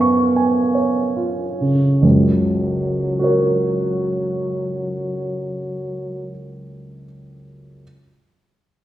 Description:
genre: classical, romantic duo for French horn and grand piano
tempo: 44-57 BPM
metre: 3/4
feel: rubato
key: F# major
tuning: A4 = 440 Hz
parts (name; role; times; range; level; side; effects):
- mellow French horn; melody; 0.0-6.3 s; F#3 to B3; -21 LUFS; right 1 dB; none
- warm baby grand piano; accompaniment; 0.0-7.8 s; F#1 to C#6; -19 LUFS; right 1 dB; none
room: wet recital hall reverb, RT60 1.2 s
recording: heard from further back in the room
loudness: -17 LUFS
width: side -13 dB against mid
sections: 0.0-2.0 A section; 2.0-5.6 B section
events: slowing down 0.0-2.0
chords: 0.0 C#7/F#; 2.0 F#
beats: 0.76 | 2.02 3.20 4.38

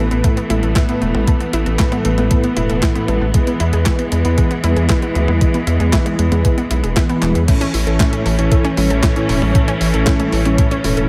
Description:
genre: italo disco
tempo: 116 BPM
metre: 4/4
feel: straight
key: A major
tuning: A4 = 440 Hz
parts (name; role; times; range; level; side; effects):
- rich studio string section; sustained chords; 0.0-11.1 s; E3 to C#4; -24 LUFS; equal; none
- analog pluck; arpeggios; 0.0-11.1 s; G#3 to A4; -27 LUFS; equal; chorus, vintage 12-bit sampler grit, digital delay
- mellow synth brass; stabs; 0.0-11.1 s; A2 to C#5; -23 LUFS; equal; chorus, cassette tape, digital delay
- round analog bass; bass; 0.0-11.1 s; E1 to E2; -20 LUFS; equal; tube saturation
- clean 12-bit digital drum machine; drums; 0.1-11.1 s; crash cymbal, handclaps, hi-hat, snare drum, toms; -25 LUFS; equal; none
- electronic kick drum; drums; 0.2-10.7 s; none; -18 LUFS; equal; none
room: light reverb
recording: none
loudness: -16 LUFS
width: mono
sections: 0.0-7.5 A section; 7.5-11.1 B section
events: drum fill 7.2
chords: 0.0 Asus2; 3.3 E; 7.5 A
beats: 0.24 0.76 | 1.27 1.79 2.31 2.83 | 3.34 3.86 4.38 4.90 | 5.41 5.93 6.45 6.96 | 7.48 8.00 8.52 9.03 | 9.55 10.07 10.59

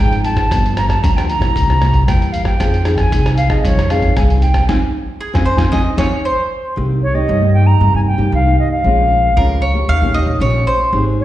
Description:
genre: samba and choro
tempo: 115 BPM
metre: 4/4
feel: straight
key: F minor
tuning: A4 = 440 Hz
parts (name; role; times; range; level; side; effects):
- silver concert flute; melody; 0.0-11.2 s; Db5 to Bb5; -19 LUFS; equal; slapback echo
- nylon-string guitar; accompaniment; 0.0-11.2 s; F2 to Ab4; -21 LUFS; left 1 dB; slapback echo
- upright bass; bass; 0.0-11.2 s; G1 to F3; -15 LUFS; equal; none
- lo-fi sampler-style drum kit; drums; 0.1-6.1 s; hi-hat, kick drum, rim click, snare drum; -17 LUFS; equal; none
- bowl-back mandolin; second line; 5.2-11.0 s; Ab4 to F5; -19 LUFS; right 1 dB; slapback echo
room: small room reverb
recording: live gig heard through the venue's PA, recital hall reverb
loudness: -12 LUFS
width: side -14 dB against mid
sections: 0.0-6.8 A section; 6.8-11.2 B section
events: band accent 4.7-6.8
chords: 0.0 Dbmaj7 (rootless); 0.5 Gm7; 1.6 C7; 2.6 Fm7; 6.8 Cm7; 8.9 Bbm7; 9.9 Eb7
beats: | 0.51 1.03 1.55 2.08 | 2.60 3.12 3.64 4.16 | 4.68 5.20 5.73 6.25 | 6.77 7.29 7.81 8.33 | 8.85 9.37 9.89 10.41 | 10.93

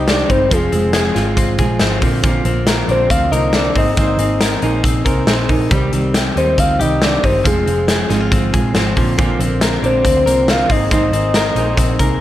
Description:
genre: jangly indie pop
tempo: 138 BPM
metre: 4/4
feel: straight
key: unclear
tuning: A4 = 440 Hz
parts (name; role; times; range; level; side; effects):
- soft octave-layered synth lead; melody; 0.0-12.2 s; Ab4 to F5; -18 LUFS; left 1 dB; chorus, analog delay
- fingerpicked steel-string acoustic guitar; accompaniment; 0.0-12.2 s; Bb2 to C5; -21 LUFS; right 4 dB; none
- direct-recorded clean electric guitar; arpeggios; 0.0-12.2 s; F3 to Bb4; -21 LUFS; left 4 dB; analog delay
- vintage muted picked electric bass; bass; 0.0-12.2 s; F1 to Eb2; -20 LUFS; equal; none
- big rock drum kit; drums; 0.1-12.1 s; hi-hat, kick drum, snare drum; -17 LUFS; equal; none
room: light reverb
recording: none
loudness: -12 LUFS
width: side -13 dB against mid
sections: 0.0-12.2 A section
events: none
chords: 0.0 Cm; 0.5 Fm; 2.0 Bbadd9; 3.8 Abadd9; 5.7 Cm; 7.4 Fm; 9.0 Bbadd9; 10.7 Abadd9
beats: 0.08 | 0.52 0.95 1.38 1.81 | 2.24 2.68 3.11 3.54 | 3.98 4.41 4.84 5.28 | 5.71 6.14 6.58 7.01 | 7.45 7.88 8.32 8.75 | 9.18 9.62 10.05 10.48 | 10.92 11.35 11.78

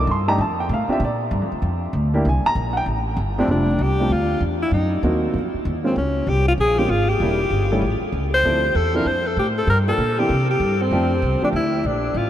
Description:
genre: jazz, small-group swing and bop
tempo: 194 BPM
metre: 4/4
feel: swing 63% on 8ths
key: F major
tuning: A4 = 439 Hz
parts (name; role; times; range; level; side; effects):
- warm baby grand piano; accompaniment; 0.0-11.5 s; F2 to C6; -23 LUFS; right 1 dB; none
- upright bass; bass; 0.0-12.3 s; E1 to C3; -22 LUFS; equal; none
- clear alto saxophone; melody; 3.4-12.3 s; C4 to C5; -21 LUFS; left 1 dB; none
room: wet huge ambient reverb, RT60 7.6 s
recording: in a vast, echoing space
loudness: -18 LUFS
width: side -11 dB against mid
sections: 0.0-3.5 A section; 3.5-12.3 B section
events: none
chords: 0.4 F69; 1.0 Bb6; 2.2 C5; 3.5 F69; 4.7 Cm7b5; 5.3 F5; 6.0 Bbm9; 7.2 Em7b5; 7.8 A; 8.4 Dm7; 9.7 Gm7; 10.3 C5; 10.9 F69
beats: 0.08 0.39 0.70 | 1.01 1.32 1.63 1.94 | 2.25 2.56 2.87 3.18 | 3.49 3.80 4.11 4.42 | 4.73 5.04 5.34 5.66 | 5.96 6.27 6.58 6.89 | 7.20 7.51 7.82 8.13 | 8.44 8.75 9.06 9.37 | 9.68 9.99 10.29 10.60 | 10.91 11.22 11.53 11.84 | 12.15

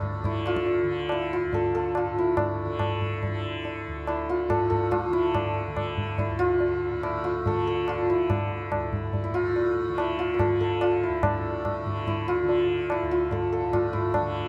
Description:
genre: indian classical, Hindustani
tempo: 142 BPM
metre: 7/4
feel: straight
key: D raga shivaranjani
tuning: A4 = 440 Hz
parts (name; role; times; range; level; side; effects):
- santur; melody; 0.0-14.5 s; D4 to B4; -28 LUFS; equal; none
- tanpura; drone; 0.0-14.5 s; D2 to D3; -36 LUFS; equal; none
- tabla; percussion; 0.0-14.3 s; none; -32 LUFS; equal; none
room: wet cathedral reverb, RT60 5.9 s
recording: in a vast, echoing space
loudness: -26 LUFS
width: mono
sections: 0.0-11.2 A section; 11.2-14.5 B section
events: speeding up 0.0-14.5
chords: none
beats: 0.24 0.67 1.10 1.52 1.95 | 2.38 2.80 3.23 3.65 4.08 4.50 4.92 | 5.35 5.77 6.20 6.62 7.04 7.46 7.88 | 8.30 8.72 9.14 9.56 9.98 10.40 10.82 | 11.24 11.65 12.07 12.49 12.90 13.32 13.73 | 14.15

